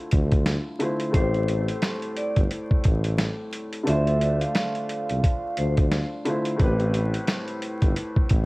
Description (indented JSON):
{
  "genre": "hip hop, boom-bap hip-hop",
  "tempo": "88 BPM",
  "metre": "4/4",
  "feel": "swing 59% on 16ths",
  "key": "A minor",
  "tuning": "A4 = 438 Hz",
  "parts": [
    { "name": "warm upright piano", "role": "accompaniment", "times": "0.0-8.5 s", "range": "A2 to C5", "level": "-29 LUFS", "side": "left 1 dB", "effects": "cassette tape, high-pass filter, low-pass filter" },
    { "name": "warm tuba", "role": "bass", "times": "0.1-8.5 s", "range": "G1 to D2", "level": "-24 LUFS", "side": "equal", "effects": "none" },
    { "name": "boom bap sampler-style drum kit", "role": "drums", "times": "0.1-8.5 s", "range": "hi-hat, kick drum, snare drum", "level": "-23 LUFS", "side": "equal", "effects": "none" },
    { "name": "vibraphone with medium hard mallets", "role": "melody", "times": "1.1-5.9 s", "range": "C5 to F5", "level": "-31 LUFS", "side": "right 1 dB", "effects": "high-pass filter, low-pass filter, tape echo" }
  ],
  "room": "studio ambience",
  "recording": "worn, warbling old tape, cassette tape, vinyl crackle, warbly pitch drift",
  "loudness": "-22 LUFS",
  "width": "side -22 dB against mid",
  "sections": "0.0-8.5 A section",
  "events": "none",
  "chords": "0.0 Dm7; 1.1 Am7; 3.9 Dm7; 6.6 Am7"
}